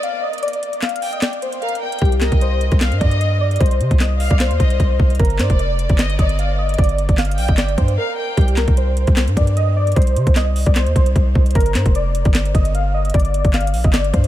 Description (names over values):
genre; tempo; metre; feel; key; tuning
hip hop, trap; 151 BPM; 4/4; half-time; C minor; A4 = 440 Hz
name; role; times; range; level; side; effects
warbly lo-fi synth keys; melody; 0.0-14.3 s; G4 to F5; -23 LUFS; equal; chorus, low-pass filter
rich studio violin section; second line; 0.0-8.4 s; D5 to G5; -28 LUFS; left 2 dB; diffuse ambient delay
trap drum kit; drums; 0.0-14.3 s; handclaps, hi-hat, kick drum, snare drum; -18 LUFS; equal; none
hard-hitting 808-style bass; bass; 2.0-14.3 s; F1 to C3; -18 LUFS; equal; none
room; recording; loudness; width
little or no reverb; none; -14 LUFS; side -13 dB against mid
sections
0.0-8.4 A section; 8.4-14.3 B section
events
break 0.0-2.0, 8.0-8.4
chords
0.0 N.C.; 2.0 Cm; 5.2 Gm; 8.4 Cm; 11.6 G5